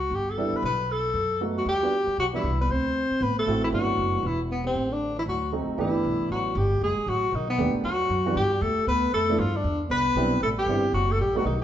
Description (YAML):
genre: jazz, small-group swing and bop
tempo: 233 BPM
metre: 4/4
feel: swing 61% on 8ths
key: G major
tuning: A4 = 441 Hz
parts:
  - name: warm tenor saxophone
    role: melody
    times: 0.0-11.6 s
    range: B3 to C5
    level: -25 LUFS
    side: left 2 dB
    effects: none
  - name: upright bass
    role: bass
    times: 0.0-11.6 s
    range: E1 to G2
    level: -29 LUFS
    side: equal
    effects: none
  - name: warm grand piano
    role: accompaniment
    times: 0.4-11.4 s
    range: D#3 to G4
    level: -29 LUFS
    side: right 3 dB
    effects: none
  - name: breathy trombone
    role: second line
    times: 1.6-11.6 s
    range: B2 to C4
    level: -32 LUFS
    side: right 2 dB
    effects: none
room: wet stone room reverb, RT60 1.3 s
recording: band playing live in one room, nothing above 7.9 kHz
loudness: -23 LUFS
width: side -10 dB against mid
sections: 0.0-5.8 A section; 5.8-11.6 B section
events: none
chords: 0.0 Cmaj7 (rootless); 0.6 B7; 1.7 Em7; 2.7 D7; 3.7 G6; 4.2 Cmaj7/E; 4.8 Amadd11; 5.3 D7b9; 5.8 G69; 6.8 F#madd9; 7.3 B7alt; 7.8 Emadd9; 8.9 Dm; 9.4 G5; 9.9 Cmaj7; 10.9 B7b13/F#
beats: 0.11 0.37 | 0.63 0.89 1.15 1.40 | 1.66 1.92 2.18 2.44 | 2.69 2.95 3.21 3.47 | 3.73 3.98 4.24 4.50 | 4.76 5.01 5.27 5.53 | 5.79 6.04 6.30 6.56 | 6.82 7.07 7.33 7.59 | 7.84 8.10 8.36 8.62 | 8.88 9.13 9.39 9.65 | 9.90 10.16 10.42 10.68 | 10.93 11.19 11.45